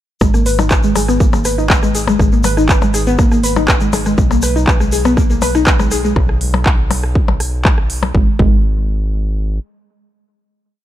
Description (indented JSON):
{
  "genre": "melodic techno",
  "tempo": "121 BPM",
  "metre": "4/4",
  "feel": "straight",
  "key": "G# minor",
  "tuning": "A4 = 440 Hz",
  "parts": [
    { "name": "soft round pluck", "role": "arpeggios", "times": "0.2-8.5 s", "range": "G#3 to B4", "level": "-17 LUFS", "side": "left 1 dB", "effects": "lush chorus, sidechain pumping, ping-pong delay" },
    { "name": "tight sequencer bass", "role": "bass", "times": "0.2-9.6 s", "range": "G#1 to B1", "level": "-18 LUFS", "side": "equal", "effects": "sidechain pumping" },
    { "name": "electronic kick drum", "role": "drums", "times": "0.2-8.5 s", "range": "none", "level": "-14 LUFS", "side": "equal", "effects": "studio reverb" },
    { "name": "techno drum kit", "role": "drums", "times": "0.2-8.1 s", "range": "handclaps, hi-hat, percussion blips, rim click", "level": "-18 LUFS", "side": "left 2 dB", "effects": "studio reverb" },
    { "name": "egg shaker", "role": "percussion", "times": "0.2-6.1 s", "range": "none", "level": "-27 LUFS", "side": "left 4 dB", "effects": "none" }
  ],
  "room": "little or no reverb",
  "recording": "dark, warm production",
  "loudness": "-12 LUFS",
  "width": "side -12 dB against mid",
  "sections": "0.2-8.1 drop; 8.1-10.8 final note",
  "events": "drop 0.2-8.1",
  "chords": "0.2 G#m; 4.2 N.C."
}